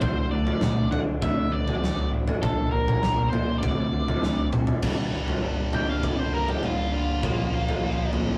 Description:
quiet-loud alternative rock; 100 BPM; 4/4; straight; G minor from 4.8 s; A4 = 440 Hz
octave-fuzz lead guitar; melody; 0.0-8.1 s; F4 to G5; -33 LUFS; equal; distortion
twelve-string electric guitar; arpeggios; 0.0-8.4 s; G2 to F#4; -35 LUFS; equal
growling picked electric bass; bass; 0.0-8.4 s; F#1 to D3; -33 LUFS; equal; overdrive
big rock drum kit; drums; 0.0-8.3 s; crash cymbal, kick drum, snare drum, toms; -28 LUFS; equal
scooped high-gain guitar; riff; 4.8-8.4 s; G2 to Bb3; -35 LUFS; equal; distortion
moderate small room reverb, RT60 0.6 s; rough rehearsal-room recording, warm saturation; -25 LUFS; mono
0.0-4.8 A section; 4.8-8.4 B section
lead electric guitar solo 4.8-8.4
0.0 D; 2.4 Bb; 3.6 D7; 4.8 Gm; 7.2 Bbm

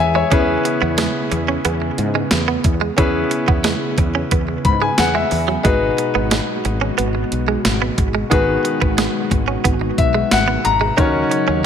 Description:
1980s-style pop; 90 BPM; 4/4; straight; C# minor; A4 = 440 Hz
clear grand piano; accompaniment; 0.0-11.7 s; D#3 to B5; -20 LUFS; left 4 dB
chorused pulse-width pad; sustained chords; 0.0-11.7 s; B2 to G#4; -24 LUFS; equal
woody fretless electric bass; bass; 0.0-11.7 s; G#1 to G#2; -22 LUFS; equal; ensemble chorus
direct-recorded clean electric guitar; riff; 0.2-11.6 s; F#3 to D#4; -23 LUFS; right 8 dB; analog chorus, tape echo
clean 12-bit digital drum machine; drums; 0.3-11.5 s; hi-hat, kick drum, snare drum, tambourine; -19 LUFS; equal; gated reverb
light reverb; -15 LUFS; side -8 dB against mid
0.0-11.7 A section
grand piano fill 4.3-5.6, 9.6-11.0
0.3 C#m7; 5.6 G#m7; 11.0 D#m7

